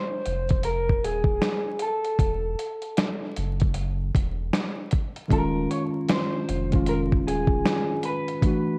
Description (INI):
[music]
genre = lo-fi hip hop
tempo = 77 BPM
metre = 4/4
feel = swing 62% on 16ths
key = unclear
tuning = A4 = 440 Hz
[part]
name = electric guitar through a small old amp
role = melody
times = 0.0-8.8 s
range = G#4 to C#5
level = -31 LUFS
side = equal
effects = phaser, analog delay
[part]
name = saturated sub bass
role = bass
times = 0.3-7.6 s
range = D#1 to F#1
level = -32 LUFS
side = equal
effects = none
[part]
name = dusty soul sampler-style drum kit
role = drums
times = 0.3-8.7 s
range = finger snaps, hi-hat, kick drum, snare drum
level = -27 LUFS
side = equal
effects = vintage 12-bit sampler grit
[part]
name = mellow tine electric piano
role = accompaniment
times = 5.3-8.8 s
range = D#3 to F#4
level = -28 LUFS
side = equal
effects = cassette tape
[sound]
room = light reverb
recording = worn, warbling old tape, cassette tape, vinyl crackle, warbly pitch drift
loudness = -25 LUFS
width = mono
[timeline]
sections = 0.0-8.8 A section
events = none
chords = 0.0 D#sus24; 2.2 Esus24; 5.3 D#9sus4